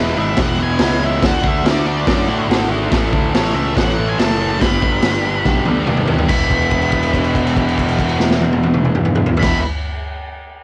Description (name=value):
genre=garage rock duo or trio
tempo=142 BPM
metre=4/4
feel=straight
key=unclear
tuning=A4 = 443 Hz
part: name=octave-fuzz lead guitar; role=melody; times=0.0-9.6 s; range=B4 to B5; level=-25 LUFS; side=equal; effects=distortion
part: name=biting overdriven guitar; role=riff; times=0.0-9.6 s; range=E2 to A4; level=-21 LUFS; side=equal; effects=cassette tape
part: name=fuzz picked electric bass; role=bass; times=0.0-9.6 s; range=E1 to A2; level=-23 LUFS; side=equal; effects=overdrive
part: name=raw garage drum kit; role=drums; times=0.4-9.5 s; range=crash cymbal, hi-hat, kick drum, snare drum, toms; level=-20 LUFS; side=equal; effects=cassette tape
room=studio ambience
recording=home recording on cassette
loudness=-16 LUFS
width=mono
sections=0.0-6.3 A section; 6.3-9.7 B section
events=drum fill 5.4-6.3; held note 6.3-9.4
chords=0.0 E; 1.2 D; 2.9 A; 4.6 G; 6.3 E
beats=0.37 0.80 | 1.22 1.64 2.06 2.48 | 2.91 3.33 3.75 4.18 | 4.60 5.02 5.45 5.87 | 6.29 6.71 7.14 7.56 | 7.98 8.41 8.83 9.25